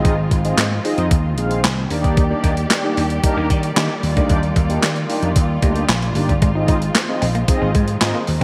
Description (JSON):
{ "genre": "early-eighties boogie funk", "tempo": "113 BPM", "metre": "4/4", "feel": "straight", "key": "unclear", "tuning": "A4 = 440 Hz", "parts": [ { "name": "mellow synth brass", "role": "accompaniment", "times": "0.0-8.4 s", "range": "Bb3 to F5", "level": "-25 LUFS", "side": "equal", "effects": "chorus" }, { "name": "muted studio string section", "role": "sustained chords", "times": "0.0-8.4 s", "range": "Eb3 to D5", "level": "-28 LUFS", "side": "equal", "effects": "none" }, { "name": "vintage slap bass", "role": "bass", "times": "0.0-8.4 s", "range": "G1 to Eb3", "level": "-23 LUFS", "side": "equal", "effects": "none" }, { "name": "clean 12-bit digital drum machine", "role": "drums", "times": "0.0-8.4 s", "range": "handclaps, hi-hat, kick drum, snare drum", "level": "-21 LUFS", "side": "equal", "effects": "gated reverb" }, { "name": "semi-hollow electric guitar", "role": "riff", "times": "6.4-8.4 s", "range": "Ab3 to Eb4", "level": "-28 LUFS", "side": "equal", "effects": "subtle chorus" } ], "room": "moderate lush hall reverb, RT60 1.9 s, digital ambience", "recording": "bright 1980s-style digital production", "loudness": "-18 LUFS", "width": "mono", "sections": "0.0-8.4 A section", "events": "none", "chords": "0.0 Ab6; 1.9 Ebmaj7; 6.4 Ab6" }